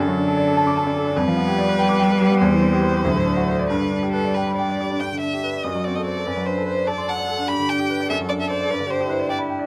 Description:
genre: quick classical-period movement for piano trio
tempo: 90-101 BPM (dotted quarters)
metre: 6/8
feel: rubato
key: G major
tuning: A4 = 435 Hz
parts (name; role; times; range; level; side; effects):
- warm violin; melody; 0.0-9.4 s; A4 to B5; -28 LUFS; equal; none
- rich cello; second line; 0.0-9.7 s; D3 to B4; -26 LUFS; equal; none
- bright concert grand piano; accompaniment; 0.0-9.7 s; D2 to D6; -24 LUFS; equal; none
room: light reverb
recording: close, detailed microphones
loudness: -21 LUFS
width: mono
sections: 0.0-5.0 A section; 5.0-9.7 A section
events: none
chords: 0.0 D/F#; 1.2 G7/F; 2.4 C/E; 3.0 D7; 3.7 G; 5.6 F#dim; 6.3 D7/F#; 7.5 G; 8.1 D7/F#; 8.7 G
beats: 0.57 | 1.17 1.79 | 2.40 3.04 | 3.69 4.35 | 5.01 5.64 | 6.26 6.88 | 7.49 8.09 | 8.70 9.30

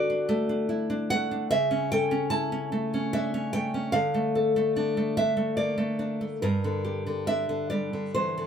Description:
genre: romantic piece for solo classical guitar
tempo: 73 BPM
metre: 3/4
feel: rubato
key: D minor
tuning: A4 = 443 Hz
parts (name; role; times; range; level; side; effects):
- nylon-string guitar; solo; 0.0-8.5 s; G2 to A5; -25 LUFS; equal; none
room: moderate studio reverb, RT60 0.6 s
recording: band playing live in one room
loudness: -25 LUFS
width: side -8 dB against mid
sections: 0.0-8.5 A section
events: none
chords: 0.0 D; 1.5 A/C#; 3.9 Dm; 6.4 Gm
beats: 0.68 | 1.49 2.31 3.13 | 3.95 4.77 5.59 | 6.43 7.29 8.16

